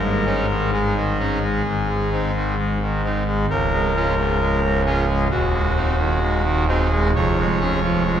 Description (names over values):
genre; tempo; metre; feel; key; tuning
classical, chorale-style piece for pipe organ; 66 BPM; 4/4; rubato; unclear; A4 = 435 Hz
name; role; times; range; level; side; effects
pipe organ, trumpet; solo; 0.0-8.2 s; Db1 to Db5; -18 LUFS; equal; none
room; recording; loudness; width
wet cathedral reverb, RT60 4.8 s; dark, warm production; -18 LUFS; side -9 dB against mid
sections
0.0-8.2 A section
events
none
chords
0.0 Absus4; 1.7 Ab; 3.5 Db; 5.3 Ab7/Eb; 7.2 Db/F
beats
0.72 1.65 2.57 | 3.48 4.39 5.30 6.21 | 7.15 8.06